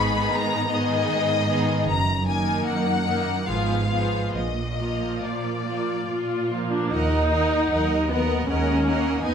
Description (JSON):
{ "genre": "classical, slow romantic movement for string orchestra", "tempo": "66-81 BPM", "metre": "3/4", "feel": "rubato", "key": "Eb minor", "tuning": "A4 = 442 Hz", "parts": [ { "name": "rich chamber violin section", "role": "melody", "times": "0.0-9.3 s", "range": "D5 to Cb6", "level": "-28 LUFS", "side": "left 5 dB", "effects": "none" }, { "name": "rich chamber violin section", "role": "second line", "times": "0.0-9.3 s", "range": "Eb4 to Eb5", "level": "-30 LUFS", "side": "left 1 dB", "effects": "none" }, { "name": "clear studio viola section", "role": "accompaniment", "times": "0.0-9.3 s", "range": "Eb3 to F4", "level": "-25 LUFS", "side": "equal", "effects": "none" }, { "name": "rich studio cello section", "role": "bass", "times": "0.0-9.3 s", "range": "Gb2 to Cb4", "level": "-28 LUFS", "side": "right 3 dB", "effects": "none" }, { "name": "rich studio double bass section", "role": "bass", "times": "0.0-9.3 s", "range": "Gb1 to Eb2", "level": "-28 LUFS", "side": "right 2 dB", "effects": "none" } ], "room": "moderate recital hall reverb, RT60 1.7 s", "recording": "close, detailed microphones", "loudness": "-21 LUFS", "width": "side -7 dB against mid", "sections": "0.0-6.9 A section; 6.9-9.3 B section", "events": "none", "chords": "0.0 Abm; 1.9 Ebm/Gb; 3.5 Fdim/Ab; 4.3 Bb; 6.9 Ebm" }